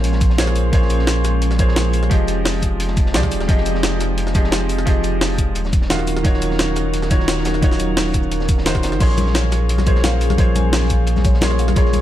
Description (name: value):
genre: liquid drum and bass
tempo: 174 BPM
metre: 4/4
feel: straight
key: Bb minor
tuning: A4 = 440 Hz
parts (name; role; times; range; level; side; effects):
- warm grand piano; accompaniment; 0.0-12.0 s; Eb3 to C6; -22 LUFS; right 1 dB; ping-pong delay
- glassy FM pad; sustained chords; 0.0-12.0 s; F3 to C6; -26 LUFS; equal; ensemble chorus, built-in reverb, sidechain pumping
- sub bass with octave; bass; 0.0-12.0 s; Eb1 to C2; -20 LUFS; equal; none
- crunchy breakbeat drum kit; drums; 0.0-12.0 s; hi-hat, snare drum; -31 LUFS; equal; high-pass filter on hats, high-pass filter on snare, high-pass filter on room
- jungle sampler-style drum kit; drums; 0.0-12.0 s; crash cymbal, hi-hat, shaker, snare drum; -23 LUFS; equal; none
- electronic kick drum; drums; 0.2-11.8 s; none; -17 LUFS; equal; none
- felt-muted upright piano; arpeggios; 9.0-12.0 s; Ab4 to Ab5; -28 LUFS; left 5 dB; tape echo
- congas; percussion; 9.2-12.0 s; none; -26 LUFS; left 6 dB; none
room: small room reverb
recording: dark, warm production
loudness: -15 LUFS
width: side -12 dB against mid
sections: 0.0-12.0 A section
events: none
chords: 0.0 Bbm7; 2.1 Fm7; 5.6 Ebm7; 9.0 Bbm7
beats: 0.04 0.38 | 0.73 1.07 1.42 1.76 | 2.11 2.45 2.80 3.14 | 3.49 3.83 4.18 4.52 | 4.87 5.21 5.56 5.90 | 6.25 6.59 6.94 7.28 | 7.63 7.97 8.31 8.66 | 9.01 9.35 9.70 10.04 | 10.38 10.73 11.07 11.42 | 11.76